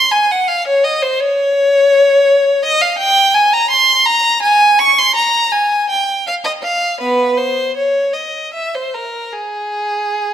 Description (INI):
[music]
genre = classical, baroque-style suite movement for unaccompanied violin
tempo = 73-85 BPM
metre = 3/4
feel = rubato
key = unclear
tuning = A4 = 440 Hz
[part]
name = rich violin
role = solo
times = 0.0-10.3 s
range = B3 to Db6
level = -11 LUFS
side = equal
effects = none
[sound]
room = moderate recital hall reverb, RT60 1.5 s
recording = none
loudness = -11 LUFS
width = side -10 dB against mid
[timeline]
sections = 0.0-10.3 A section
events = none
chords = none